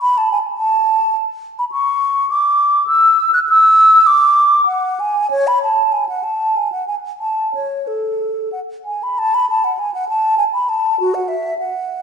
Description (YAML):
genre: classical, baroque-style fantasia for unaccompanied flute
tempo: 89-106 BPM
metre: 3/4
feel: rubato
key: A major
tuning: A4 = 440 Hz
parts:
  - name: mellow hollow concert flute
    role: solo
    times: 0.0-12.0 s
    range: F#4 to F#6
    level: -13 LUFS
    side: equal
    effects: none
room: wet recital hall reverb, RT60 1.4 s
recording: heard from further back in the room, nothing above 11.0 kHz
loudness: -13 LUFS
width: side -7 dB against mid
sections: 0.0-9.2 A section; 9.2-12.0 A section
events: none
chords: none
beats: | 0.03 0.60 1.18 | 1.75 2.33 2.91 | 3.51 4.10 4.69 | 5.33 5.96 6.58 | 7.23 7.89 8.54 | 9.19 9.79 10.38 | 10.98 11.58